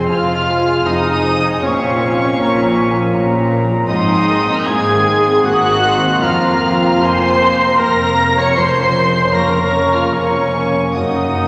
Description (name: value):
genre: cinematic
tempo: 77 BPM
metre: 3/4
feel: uneven beats, rubato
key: Bb minor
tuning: A4 = 440 Hz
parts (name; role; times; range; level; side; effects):
- warm symphonic violin section; melody; 0.0-11.5 s; Db6 to Db7; -24 LUFS; equal; none
- mellow cor anglais; second line; 0.0-11.5 s; Db4 to Db5; -24 LUFS; equal; none
- small flute group; second line; 0.0-11.5 s; F5 to Eb6; -24 LUFS; equal; none
- warm chamber violin section; second line; 0.0-11.5 s; Db5 to Db6; -26 LUFS; equal; none
- dark symphonic viola section; accompaniment; 0.0-11.5 s; Db4 to Db5; -22 LUFS; equal; none
- felt-muted upright piano; accompaniment; 0.0-11.5 s; F2 to C5; -24 LUFS; equal; none
- warm French horn section; sustained chords; 0.0-11.5 s; Db3 to Eb4; -24 LUFS; equal; none
- concert harp; arpeggios; 0.0-11.5 s; F2 to Ab4; -25 LUFS; equal; none
- dark symphonic double bass section; bass; 0.1-11.5 s; F1 to Bb1; -27 LUFS; equal; none
- rich symphonic cello section; bass; 0.1-11.5 s; F2 to Bb2; -26 LUFS; equal; none
room: wet concert hall reverb, RT60 2.2 s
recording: none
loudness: -14 LUFS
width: mono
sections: 0.0-11.5 A section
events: none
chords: 0.0 Fm; 1.6 Bbmadd9; 3.9 Abadd9; 6.2 Fsus4; 8.6 Bbmadd9/F; 11.0 Ebm/Gb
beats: 0.10 0.87 | 1.63 2.38 3.14 | 3.89 4.68 5.46 | 6.22 7.02 7.80 | 8.58 9.36 10.15 | 10.96